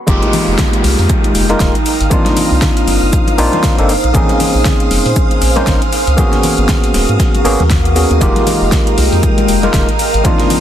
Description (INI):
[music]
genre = deep house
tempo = 118 BPM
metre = 4/4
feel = swing 58% on 16ths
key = F minor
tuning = A4 = 440 Hz
[part]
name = deep dark ambient pad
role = sustained chords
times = 0.1-10.6 s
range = Ab3 to Bb5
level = -21 LUFS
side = right 2 dB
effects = chorus, built-in reverb, sidechain pumping
[part]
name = overdriven tine electric piano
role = stabs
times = 0.1-10.6 s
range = Ab3 to C5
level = -16 LUFS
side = equal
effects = vintage 12-bit sampler grit, sidechain pumping, analog delay
[part]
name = round analog bass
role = bass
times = 0.1-10.2 s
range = Eb1 to Bb2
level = -15 LUFS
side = equal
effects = tube saturation, sidechain pumping
[part]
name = breakbeat sampler-style drum kit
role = drums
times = 0.1-10.6 s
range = hi-hat, shaker, snare drum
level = -27 LUFS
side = equal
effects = overdrive, sidechain pumping on perc, high-pass filter on perc, high-pass filter on snare, sidechain pumping on hats, high-pass filter on hats, high-pass filter on room
[part]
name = deep house drum kit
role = drums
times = 0.1-10.6 s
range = hi-hat, snare drum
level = -20 LUFS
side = left 1 dB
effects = overdrive
[part]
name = electronic kick drum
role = drums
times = 0.1-10.4 s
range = none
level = -15 LUFS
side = equal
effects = overdrive
[part]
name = congas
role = percussion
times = 0.1-10.6 s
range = none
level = -23 LUFS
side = left 3 dB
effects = none
[part]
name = downlifter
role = sound effects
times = 0.1-4.1 s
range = none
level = -24 LUFS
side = right 1 dB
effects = none
[part]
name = string machine, violins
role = texture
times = 0.1-10.6 s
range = F5 to Eb6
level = -24 LUFS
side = equal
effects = ensemble chorus, sidechain pumping
[part]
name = warbly tape-like pad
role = texture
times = 1.2-10.6 s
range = Eb3 to C6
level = -23 LUFS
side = left 2 dB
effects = chorus, built-in reverb, phaser, sidechain pumping
[sound]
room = digital ambience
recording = dense, heavily limited modern master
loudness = -10 LUFS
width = side -10 dB against mid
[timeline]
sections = 0.1-10.6 A section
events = drop 0.1-10.6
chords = 0.1 Fm11; 2.1 Cm11; 4.1 Bbm11; 6.2 Abm11; 8.2 Fm11